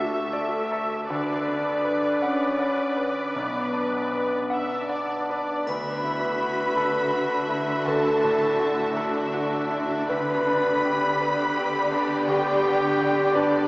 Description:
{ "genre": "cinematic, emotional film score for orchestra", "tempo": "54 BPM (dotted quarters)", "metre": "6/8", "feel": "rubato", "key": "B minor, D major from 5.7 s", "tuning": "A4 = 440 Hz", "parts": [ { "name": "bright grand piano", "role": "accompaniment", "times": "0.0-13.7 s", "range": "B1 to F#5", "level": "-30 LUFS", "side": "equal", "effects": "none" }, { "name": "clear symphonic viola section", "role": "accompaniment", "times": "0.0-13.7 s", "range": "A3 to E5", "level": "-30 LUFS", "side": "equal", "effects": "none" }, { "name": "warm French horn section", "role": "sustained chords", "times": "0.0-5.3 s", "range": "A3 to D4", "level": "-28 LUFS", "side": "equal", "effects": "none" }, { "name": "concert harp", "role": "arpeggios", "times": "0.0-13.7 s", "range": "B2 to F#5", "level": "-40 LUFS", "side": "equal", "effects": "none" }, { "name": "warm clarinet", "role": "second line", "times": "4.5-13.7 s", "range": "D4 to B4", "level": "-25 LUFS", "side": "equal", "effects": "none" }, { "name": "warm symphonic violin section", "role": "second line", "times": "4.5-13.7 s", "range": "D5 to B5", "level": "-29 LUFS", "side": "equal", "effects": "none" }, { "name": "rich studio violin section", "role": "melody", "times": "5.7-13.7 s", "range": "D5 to E5", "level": "-31 LUFS", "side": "left 1 dB", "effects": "none" }, { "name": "rich symphonic cello section", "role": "bass", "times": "5.7-13.7 s", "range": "D3", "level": "-30 LUFS", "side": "equal", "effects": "none" }, { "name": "triangle", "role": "percussion", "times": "5.7-7.1 s", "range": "none", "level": "-46 LUFS", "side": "equal", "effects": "none" } ], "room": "wet cathedral reverb, RT60 5.6 s", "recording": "recorded in a church or concert hall, small speaker sound", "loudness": "-22 LUFS", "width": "side -22 dB against mid", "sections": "0.0-5.7 A section; 5.7-13.7 B section", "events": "none", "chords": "0.0 Dsus2; 1.1 Bm/D; 3.4 Bm; 5.7 Dadd9; 10.1 G/D", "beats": "| 1.10 2.21 | 3.35 4.51 | 5.68 6.78 | 7.88 8.97 | 10.11 11.21 | 12.29 13.36" }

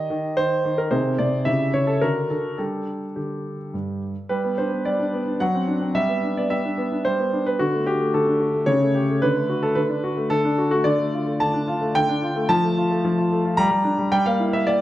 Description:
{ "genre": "classical-period piano sonatina", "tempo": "110 BPM", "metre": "3/4", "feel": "straight", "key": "G minor, G major from 4.3 s, D minor from 10.9 s", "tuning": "A4 = 440 Hz", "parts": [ { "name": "warm grand piano", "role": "solo", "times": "0.0-14.8 s", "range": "G2 to Bb5", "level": "-20 LUFS", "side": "equal", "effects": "none" } ], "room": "moderate recital hall reverb, RT60 1.5 s", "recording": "dark, warm production", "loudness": "-20 LUFS", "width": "side -14 dB against mid", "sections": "0.0-4.3 A section; 4.3-14.8 B section", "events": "none", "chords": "0.0 Eb; 0.9 Ab/C; 1.5 C#dim; 2.0 D; 2.6 G5; 4.3 G; 5.4 D7/F#; 6.0 G; 7.6 D; 8.7 A7/C#; 9.2 D; 10.9 Dm; 12.5 F; 13.6 Gm; 14.1 Edim/G", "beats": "0.39 | 0.93 1.47 2.03 | 2.59 3.17 3.73 | 4.30 4.86 5.41 | 5.96 6.51 7.06 | 7.61 8.15 8.69 | 9.23 9.77 10.31 | 10.86 11.40 11.94 | 12.49 13.03 13.58 | 14.12 14.67" }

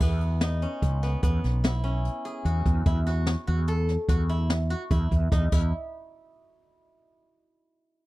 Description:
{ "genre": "progressive instrumental, band music in an uneven meter", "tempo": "147 BPM", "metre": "7/4", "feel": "straight", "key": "E major", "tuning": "A4 = 436 Hz", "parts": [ { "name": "steel-string zither", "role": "arpeggios", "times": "0.0-5.7 s", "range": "B3 to A4", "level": "-33 LUFS", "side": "equal", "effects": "none" }, { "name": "mellow fretless electric bass", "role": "bass", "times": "0.0-5.7 s", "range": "B1 to E2", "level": "-25 LUFS", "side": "equal", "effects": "ensemble chorus" }, { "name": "jazz brush drum kit", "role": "drums", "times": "0.0-5.6 s", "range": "crash cymbal, hi-hat, kick drum, snare drum", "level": "-26 LUFS", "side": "equal", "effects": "none" } ], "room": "studio reverb", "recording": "dry, close 1970s-style studio recording", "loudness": "-23 LUFS", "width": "side -18 dB against mid", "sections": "0.0-5.7 A section; 5.7-8.1 B section", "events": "none", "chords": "0.0 E6; 2.9 Esus2; 5.5 N.C.", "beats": "| 0.00 0.41 0.82 1.23 1.64 2.05 2.46 | 2.86 3.27 3.68 4.09 4.50 4.91 5.32" }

